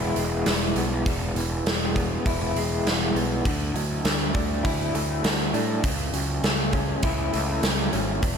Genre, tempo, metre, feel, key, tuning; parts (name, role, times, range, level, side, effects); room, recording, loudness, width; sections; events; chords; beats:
quiet-loud alternative rock; 100 BPM; 4/4; straight; A4 = 440 Hz
electric guitar through a small old amp; arpeggios; 0.0-8.4 s; E2 to E4; -27 LUFS; left 1 dB; tremolo
fuzz picked electric bass; bass; 0.0-8.4 s; E1 to A2; -28 LUFS; equal; overdrive
big rock drum kit; drums; 0.2-8.4 s; hi-hat, kick drum, snare drum; -26 LUFS; equal
little or no reverb; -22 LUFS; side -7 dB against mid
0.0-8.4 A section
0.0 E; 3.5 Dadd9; 5.8 A6/C#
0.47 | 1.06 1.66 2.26 2.85 | 3.45 4.05 4.64 5.24 | 5.84 6.43 7.03 7.63 | 8.23